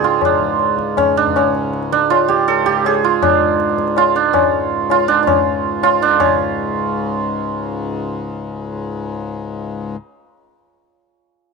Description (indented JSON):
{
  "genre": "indian classical, Hindustani",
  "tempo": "161 BPM",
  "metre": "4/4",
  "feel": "straight",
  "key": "unclear",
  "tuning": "A4 = 444 Hz",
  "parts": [
    { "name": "santur", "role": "melody", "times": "0.0-10.1 s", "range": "C4 to A4", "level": "-15 LUFS", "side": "right 9 dB", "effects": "none" },
    { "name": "hand-pumped harmonium", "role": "drone", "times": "0.0-10.0 s", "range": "Db2 to Ab2", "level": "-24 LUFS", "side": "left 5 dB", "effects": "none" },
    { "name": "tabla", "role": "percussion", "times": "0.0-6.3 s", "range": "none", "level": "-19 LUFS", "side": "left 15 dB", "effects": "none" }
  ],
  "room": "moderate spring reverb, RT60 2.2 s",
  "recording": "1960s-style stereo with parts hard left and right",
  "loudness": "-14 LUFS",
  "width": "side -4 dB against mid",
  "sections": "0.0-6.2 A section; 6.2-9.2 B section",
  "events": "none",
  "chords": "none"
}